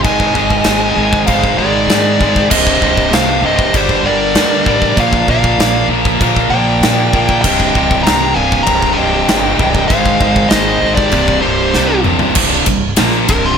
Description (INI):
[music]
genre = heavy metal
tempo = 97 BPM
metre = 4/4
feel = straight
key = C minor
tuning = A4 = 440 Hz
[part]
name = high-gain lead guitar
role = second line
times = 0.0-12.0 s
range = G4 to G5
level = -23 LUFS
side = right 3 dB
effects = distortion, tape echo
[part]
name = distorted electric guitar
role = riff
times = 0.0-13.6 s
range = C2 to Bb3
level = -17 LUFS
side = left 18 dB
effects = overdrive
[part]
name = high-gain distorted guitar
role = riff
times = 0.0-13.6 s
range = C2 to Bb3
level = -17 LUFS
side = right 15 dB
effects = distortion
[part]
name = upright bass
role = bass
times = 0.0-13.6 s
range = C1 to Bb2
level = -20 LUFS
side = equal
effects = none
[part]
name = big rock drum kit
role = drums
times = 0.0-13.4 s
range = china cymbal, crash cymbal, kick drum, ride cymbal, snare drum, toms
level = -16 LUFS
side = equal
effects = none
[part]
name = nasal lead guitar with a parked wah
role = melody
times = 0.1-13.6 s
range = F4 to Bb5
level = -16 LUFS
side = left 1 dB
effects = overdrive
[sound]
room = little or no reverb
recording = none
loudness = -10 LUFS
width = side -7 dB against mid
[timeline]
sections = 0.0-12.4 A section; 12.4-13.6 B section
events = drum fill 11.8-12.4; lead electric guitar solo 12.4-13.6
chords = 0.0 Ab5; 2.5 Cm; 3.7 Gm; 5.0 Bb; 7.4 Cm; 9.9 Ab; 11.1 C5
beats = | 0.04 0.66 1.28 1.89 | 2.51 3.13 3.74 4.36 | 4.97 5.59 6.21 6.82 | 7.44 8.05 8.67 9.28 | 9.90 10.52 11.13 11.75 | 12.37 12.98